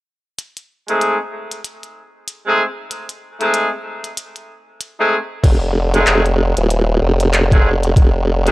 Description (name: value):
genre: glitch hop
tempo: 95 BPM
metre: 4/4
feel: swing 58% on 16ths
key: unclear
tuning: A4 = 440 Hz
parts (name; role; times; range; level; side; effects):
- glitchy drum kit; drums; 0.4-8.5 s; crash cymbal, handclaps, hi-hat; -21 LUFS; equal; studio reverb
- clear horn section; stabs; 0.9-8.5 s; Ab3 to G#4; -18 LUFS; equal; sidechain pumping, low-pass filter, analog delay
- formant-sweep wobble bass; bass; 5.4-8.5 s; Eb1 to F1; -14 LUFS; equal; chorus
- electronic kick drum; drums; 5.4-8.1 s; none; -10 LUFS; equal; overdrive, studio reverb
room: digital ambience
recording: dry, gritty hardware recording, cassette tape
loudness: -13 LUFS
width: side -19 dB against mid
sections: 0.4-5.4 A section; 5.4-8.5 B section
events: filter sweep on horn section 0.4-5.4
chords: 0.4 Adim; 5.4 F7#9